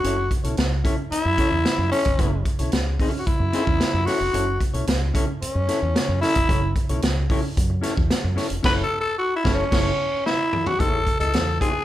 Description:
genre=funk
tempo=112 BPM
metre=4/4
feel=straight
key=F# minor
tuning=A4 = 440 Hz
part: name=growling tenor saxophone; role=melody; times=0.0-11.8 s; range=C#4 to B4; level=-23 LUFS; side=left 1 dB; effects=none
part: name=semi-hollow electric guitar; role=accompaniment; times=0.0-11.8 s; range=B3 to D#5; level=-29 LUFS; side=left 2 dB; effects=none
part: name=deep dub fingered electric bass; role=bass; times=0.0-11.6 s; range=E#1 to F#2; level=-25 LUFS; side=equal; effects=none
part: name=vintage drum kit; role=drums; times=0.0-11.7 s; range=crash cymbal, hi-hat, kick drum, snare drum, toms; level=-23 LUFS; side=equal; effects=none
room=light reverb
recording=band playing live in one room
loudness=-19 LUFS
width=side -13 dB against mid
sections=0.0-10.8 A section; 10.8-11.8 B section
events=tenor saxophone solo 0.0-10.8; band accent 8.6-10.8; drum fill 10.3-10.8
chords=0.0 F#m7; 10.8 Amaj9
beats=| 0.04 0.58 1.12 1.66 | 2.19 2.73 3.27 3.81 | 4.34 4.88 5.42 5.96 | 6.49 7.03 7.57 8.11 | 8.65 9.18 9.72 10.26 | 10.80 11.34

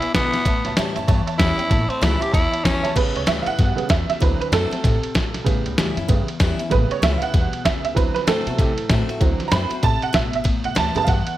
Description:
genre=rockabilly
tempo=192 BPM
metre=4/4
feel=swing 62% on 8ths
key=A mixolydian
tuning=A4 = 441 Hz
part: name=raspy tenor saxophone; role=melody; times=0.0-2.9 s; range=B3 to G4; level=-23 LUFS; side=equal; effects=analog delay
part: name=honky-tonk upright piano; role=accompaniment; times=0.0-11.4 s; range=C#3 to B5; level=-24 LUFS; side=right 6 dB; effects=none
part: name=picked steel-string acoustic guitar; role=accompaniment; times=0.0-11.4 s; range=E2 to F#4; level=-28 LUFS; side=left 4 dB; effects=none
part: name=upright bass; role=bass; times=0.0-11.3 s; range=G#1 to C3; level=-24 LUFS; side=equal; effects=none
part: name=lo-fi sampler-style drum kit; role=drums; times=0.0-11.3 s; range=crash cymbal, kick drum, ride cymbal, snare drum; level=-21 LUFS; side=equal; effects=none
room=small room ambience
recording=none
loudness=-17 LUFS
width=side -14 dB against mid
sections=0.0-3.0 A section; 3.0-11.4 B section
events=honky-tonk piano solo 3.0-11.4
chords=0.5 A7; 4.2 D7; 5.5 A7; 8.0 D7; 10.5 A7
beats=0.14 | 0.46 0.77 1.08 1.39 | 1.71 2.02 2.33 2.65 | 2.96 3.27 3.58 3.90 | 4.21 4.52 4.84 5.15 | 5.46 5.77 6.09 6.40 | 6.71 7.02 7.33 7.65 | 7.96 8.27 8.58 8.89 | 9.21 9.52 9.83 10.14 | 10.45 10.76 11.08

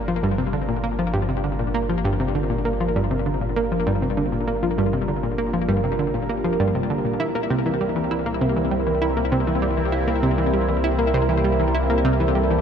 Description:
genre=ambient, sequencer-driven space music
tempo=99 BPM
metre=4/4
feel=straight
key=G dorian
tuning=A4 = 440 Hz
part: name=sweeping resonant pad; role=sustained chords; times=0.0-12.6 s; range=G3 to Bb4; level=-24 LUFS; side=right 2 dB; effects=chorus
part: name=analog pluck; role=riff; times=0.0-12.6 s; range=G2 to E4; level=-22 LUFS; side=left 1 dB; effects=chorus, ping-pong delay
part: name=warm sub bass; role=bass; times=0.0-12.6 s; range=G1 to C2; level=-28 LUFS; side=equal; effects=none
room=moderate huge ambient reverb, RT60 7.7 s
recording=in a vast, echoing space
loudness=-20 LUFS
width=side -8 dB against mid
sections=0.0-12.6 A section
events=fade-in on analog synth pad 0.0-12.6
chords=0.0 Gm7; 7.2 C7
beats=0.54 1.14 1.75 | 2.35 2.96 3.56 4.17 | 4.78 5.38 5.99 6.60 | 7.20 7.81 8.41 9.02 | 9.63 10.23 10.84 11.44 | 12.05

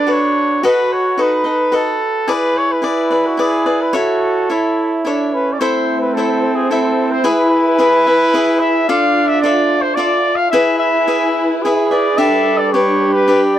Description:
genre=mexican folk, mariachi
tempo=109 BPM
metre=3/4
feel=straight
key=A major, A harmonic minor from 5.6 s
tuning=A4 = 440 Hz
part: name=warm trumpet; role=melody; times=0.0-13.6 s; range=F#4 to F5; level=-16 LUFS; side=equal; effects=none
part: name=mellow trumpet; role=second line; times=0.0-13.6 s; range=C4 to A4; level=-18 LUFS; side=right 4 dB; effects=none
part: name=cavaquinho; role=accompaniment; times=0.0-13.6 s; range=D4 to E5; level=-18 LUFS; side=left 3 dB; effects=none
part: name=dark studio violin section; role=sustained chords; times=5.6-13.6 s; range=G3 to G#5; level=-22 LUFS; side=left 2 dB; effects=none
room=light reverb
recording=dry, close 1970s-style studio recording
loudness=-12 LUFS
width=side -11 dB against mid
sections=0.0-5.6 A section; 5.6-13.6 B section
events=none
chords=0.0 D6; 0.6 B7; 2.3 E7; 3.9 A; 5.6 Am; 7.3 E; 8.9 Dmadd9; 10.5 E; 12.2 G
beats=0.09 | 0.63 1.18 1.73 | 2.28 2.83 3.38 | 3.94 4.49 5.05 | 5.61 6.16 6.71 | 7.26 7.81 8.35 | 8.89 9.44 9.98 | 10.53 11.07 11.62 | 12.18 12.73 13.28

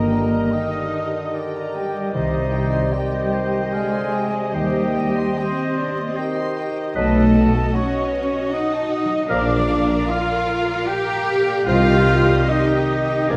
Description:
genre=classical, slow romantic movement for symphony orchestra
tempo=75 BPM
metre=3/4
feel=rubato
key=unclear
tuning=A4 = 440 Hz
part: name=rich symphonic violin section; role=melody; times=0.0-13.4 s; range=Eb5 to F5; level=-37 LUFS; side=equal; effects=none
part: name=breathy clarinet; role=second line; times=0.0-13.4 s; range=G4 to Eb5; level=-34 LUFS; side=equal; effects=none
part: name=silver concert flute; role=second line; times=0.0-13.4 s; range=Eb5 to G6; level=-32 LUFS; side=equal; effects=none
part: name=warm oboe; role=second line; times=0.0-13.4 s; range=C5 to Ab5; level=-35 LUFS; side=equal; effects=none
part: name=warm symphonic violin section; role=second line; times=0.0-13.4 s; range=Bb4 to Eb6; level=-37 LUFS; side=equal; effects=none
part: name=rich symphonic viola section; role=accompaniment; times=0.0-13.4 s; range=F#4 to Bb4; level=-32 LUFS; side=equal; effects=none
part: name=warm bassoon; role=accompaniment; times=0.0-13.4 s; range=C3 to F#3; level=-32 LUFS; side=equal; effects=none
part: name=mellow French horn section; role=sustained chords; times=0.0-13.4 s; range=G4 to Eb5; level=-32 LUFS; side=equal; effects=none
part: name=concert harp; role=arpeggios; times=0.0-13.4 s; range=G2 to Eb5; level=-30 LUFS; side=equal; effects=none
part: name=bright trumpet section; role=stabs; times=0.0-13.4 s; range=Eb4 to G5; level=-29 LUFS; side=equal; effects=none
part: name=rich symphonic cello section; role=bass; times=0.0-13.4 s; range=Eb3 to G4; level=-25 LUFS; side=equal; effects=none
part: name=rich symphonic double bass section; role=bass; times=0.0-13.4 s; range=G1 to Eb2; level=-28 LUFS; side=equal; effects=none
part: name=warm tuba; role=bass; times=0.0-13.4 s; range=G1 to Eb2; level=-28 LUFS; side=equal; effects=none
room=wet scoring stage reverb, RT60 1.7 s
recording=dark, warm production, vinyl crackle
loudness=-20 LUFS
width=mono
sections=0.0-13.4 A section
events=none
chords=0.0 Eb/G; 2.1 Cm; 4.5 Cm/Eb; 7.0 B7; 9.3 Bb; 11.7 Cm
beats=0.53 1.35 | 2.15 2.94 3.74 | 4.54 5.39 6.18 | 6.96 7.75 8.52 | 9.30 10.09 10.87 | 11.66 12.47 13.29

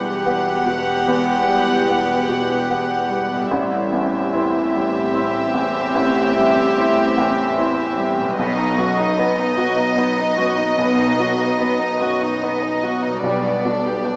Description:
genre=cinematic, emotional film score for orchestra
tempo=74 BPM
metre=3/4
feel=rubato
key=E minor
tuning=A4 = 441 Hz
part: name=warm symphonic violin section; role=melody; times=0.0-14.2 s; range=D5 to F#5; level=-25 LUFS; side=equal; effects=none
part: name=warm symphonic violin section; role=second line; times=0.0-14.2 s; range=G3 to G4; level=-25 LUFS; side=equal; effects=none
part: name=dark symphonic viola section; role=accompaniment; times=0.0-14.2 s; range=B3 to C4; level=-27 LUFS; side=equal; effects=none
part: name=felt-muted upright piano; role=accompaniment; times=0.0-14.2 s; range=A1 to F#5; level=-25 LUFS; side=equal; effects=none
part: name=concert harp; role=arpeggios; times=0.0-14.2 s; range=E2 to E5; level=-32 LUFS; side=equal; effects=none
part: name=dark symphonic double bass section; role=bass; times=0.0-13.9 s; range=E1 to B1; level=-35 LUFS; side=equal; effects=none
part: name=warm symphonic cello section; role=bass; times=0.0-13.9 s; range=E2 to B2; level=-32 LUFS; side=equal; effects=none
room=wet scoring stage reverb, RT60 1.8 s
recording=small speaker sound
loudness=-19 LUFS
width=mono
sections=0.0-14.2 A section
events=none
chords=0.0 Emadd9; 3.5 Am7; 8.4 B; 13.2 G/B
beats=0.26 | 1.07 1.88 2.69 | 3.51 4.33 5.14 | 5.94 6.75 7.56 | 8.37 9.18 9.98 | 10.79 11.60 12.42 | 13.23 14.05

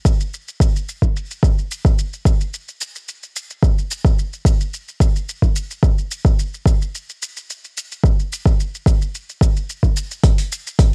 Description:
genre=downtempo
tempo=109 BPM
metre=4/4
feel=straight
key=none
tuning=none
part: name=electronic kick drum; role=drums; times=0.1-10.9 s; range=none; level=-17 LUFS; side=equal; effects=none
part: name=electronic shaker and hi-hat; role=drums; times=0.1-10.9 s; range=none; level=-32 LUFS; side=equal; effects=overdrive
room=little or no reverb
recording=worn, warbling old tape, cassette tape, warbly pitch drift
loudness=-19 LUFS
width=mono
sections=0.0-10.2 A section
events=none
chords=none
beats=0.33 0.88 | 1.43 1.98 2.53 3.08 | 3.63 4.18 4.73 5.28 | 5.83 6.38 6.93 7.49 | 8.04 8.59 9.14 9.69 | 10.24 10.79

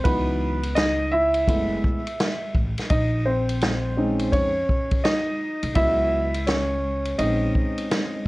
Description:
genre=hip hop, jazz-hop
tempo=84 BPM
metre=4/4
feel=swing 64% on 16ths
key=Bb minor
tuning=A4 = 438 Hz
part: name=dark upright piano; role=accompaniment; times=0.0-8.2 s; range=Fb3 to Fb5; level=-23 LUFS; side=equal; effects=none
part: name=upright bass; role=bass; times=0.0-7.5 s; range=Gb1 to F2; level=-27 LUFS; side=equal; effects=none
part: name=vintage drum kit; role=drums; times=0.0-8.1 s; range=hi-hat, kick drum, ride cymbal, snare drum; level=-25 LUFS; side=equal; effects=none
room=moderate small room ambience, RT60 0.5 s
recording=worn, warbling old tape, cassette tape, warbly pitch drift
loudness=-20 LUFS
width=side -20 dB against mid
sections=0.0-8.3 A section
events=upright piano solo 0.0-8.3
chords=0.0 Dbm11; 1.5 Gbm11; 2.9 Bbm11; 5.8 Dbm11; 7.2 Bbm11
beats=| 0.05 0.76 1.48 2.19 | 2.90 3.62 4.33 5.05 | 5.76 6.48 7.19 7.91

